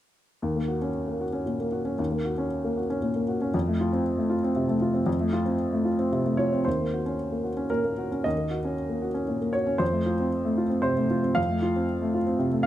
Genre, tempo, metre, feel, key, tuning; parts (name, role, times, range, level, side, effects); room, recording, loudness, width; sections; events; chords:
neoclassical minimalist piano; 116 BPM; 3/4; rubato; A4 = 440 Hz
warm baby grand piano; solo; 0.4-12.7 s; Eb2 to F5; -24 LUFS; equal
moderate recital hall reverb, RT60 1.4 s; close, detailed microphones; -24 LUFS; side -12 dB against mid
0.4-6.7 A section; 6.7-12.7 B section
0.4 Ebm7; 3.5 F; 6.7 Ebm7; 9.8 F